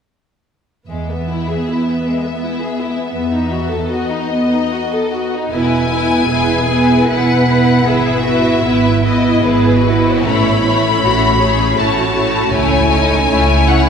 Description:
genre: classical, slow romantic movement for string orchestra.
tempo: 77 BPM.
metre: 3/4.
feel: uneven beats, rubato.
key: E major.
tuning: A4 = 441 Hz.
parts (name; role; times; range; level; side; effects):
warm studio violin section; melody; 0.9-13.9 s; B4 to B5; -19 LUFS; left 5 dB; none.
rich studio violin section; second line; 0.9-13.9 s; G#3 to C#5; -20 LUFS; left 2 dB; none.
rich studio viola section; accompaniment; 0.9-13.9 s; A3 to E4; -17 LUFS; right 2 dB; none.
warm studio cello section; bass; 0.9-13.9 s; E2 to B4; -22 LUFS; right 3 dB; none.
rich studio double bass section; bass; 5.5-13.9 s; E1 to C#2; -18 LUFS; right 2 dB; none.
room: wet cathedral reverb, RT60 5.2 s.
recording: recorded in a church or concert hall.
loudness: -12 LUFS.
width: side -7 dB against mid.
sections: 0.9-5.5 A section; 5.5-13.9 B section.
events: none.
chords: 0.9 E; 7.9 E/G#; 10.3 A; 12.6 A/C#.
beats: | 0.89 1.68 2.42 | 3.16 3.91 4.70 | 5.53 6.30 7.08 | 7.88 8.65 9.43 | 10.26 11.04 11.80 | 12.55 13.29.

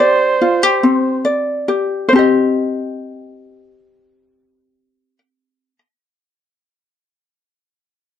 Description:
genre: pop.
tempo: 68-73 BPM.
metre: 4/4.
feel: swing 55% on 16ths.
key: C minor.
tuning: A4 = 440 Hz.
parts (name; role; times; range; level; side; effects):
clear trumpet; melody; 0.0-1.3 s; C5; -16 LUFS; right 5 dB; none.
ukulele; accompaniment; 0.0-5.8 s; C4 to Eb5; -14 LUFS; left 2 dB; none.
room: light reverb.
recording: dark, warm production.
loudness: -13 LUFS.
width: side -9 dB against mid.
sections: 0.0-2.1 A section; 2.1-5.7 B section.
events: slowing down 0.0-2.1.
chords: 0.0 Gsus4; 2.1 Cm.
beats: 0.41 1.25 | 2.12 3.00 3.88 4.77.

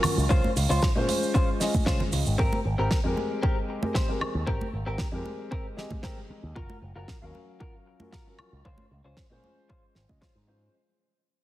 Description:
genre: nu-disco, nu disco.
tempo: 115 BPM.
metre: 4/4.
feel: straight.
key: unclear.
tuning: A4 = 440 Hz.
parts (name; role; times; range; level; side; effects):
dark grand piano; accompaniment; 0.0-10.7 s; Gb3 to F5; -32 LUFS; left 1 dB; sidechain pumping, digital delay.
direct-recorded clean electric guitar; riff; 0.0-10.5 s; C4 to C5; -33 LUFS; left 2 dB; lush chorus, low-pass filter, digital delay.
picked electric bass with an envelope filter; bass; 0.0-10.7 s; Gb1 to Db3; -28 LUFS; equal; none.
damped 70s drum kit; drums; 0.0-10.3 s; cabasa, hi-hat, snare drum, woodblock; -32 LUFS; right 1 dB; studio reverb.
congas; percussion; 0.0-10.2 s; none; -34 LUFS; right 2 dB; none.
electronic kick drum; drums; 0.3-10.3 s; none; -27 LUFS; equal; studio reverb.
room: light reverb, small room ambience.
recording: heavily compressed radio sound, multiband compression.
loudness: -24 LUFS.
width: side -15 dB against mid.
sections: 0.0-10.7 A section.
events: fade-out 0.0-10.7.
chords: 0.3 Dbmaj7; 2.4 Abmaj9; 6.6 Gbmaj7; 8.6 Dbmaj7.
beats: | 0.30 0.82 1.34 1.86 | 2.39 2.91 3.43 3.95 | 4.47 5.00 5.52 6.04 | 6.56 7.08 7.60 8.13 | 8.65 9.17 9.69 10.21.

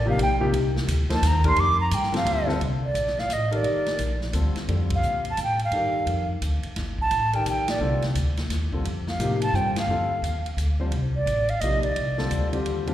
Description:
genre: modal jazz.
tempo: 173 BPM.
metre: 3/4.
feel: swing 63% on 8ths.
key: C dorian.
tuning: A4 = 440 Hz.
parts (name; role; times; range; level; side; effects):
mellow silver concert flute; melody; 0.0-12.5 s; D5 to D6; -25 LUFS; right 2 dB; slapback echo.
upright bass; bass; 0.0-12.9 s; G1 to Bb2; -26 LUFS; equal; none.
warm grand piano; accompaniment; 0.1-12.9 s; C3 to C5; -29 LUFS; left 3 dB; slapback echo.
swinging big-band drum kit; drums; 0.2-12.9 s; hi-hat, kick drum, ride cymbal, snare drum; -33 LUFS; equal; none.
room: light reverb, small room ambience.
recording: live gig heard through the venue's PA, recital hall reverb.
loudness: -22 LUFS.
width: side -12 dB against mid.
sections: 0.0-2.6 A section; 2.6-12.9 B section.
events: flute solo 0.0-2.6; band accent 4.9, 7.6, 9.7.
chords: 0.0 C9sus4.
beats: 0.19 | 0.54 0.88 1.23 | 1.57 1.92 2.26 | 2.61 2.95 3.30 | 3.65 3.99 4.34 | 4.68 5.03 5.38 | 5.72 6.07 6.42 | 6.76 7.11 7.46 | 7.80 8.15 8.50 | 8.85 9.19 9.54 | 9.89 10.23 10.58 | 10.93 11.27 11.62 | 11.97 12.31 12.66.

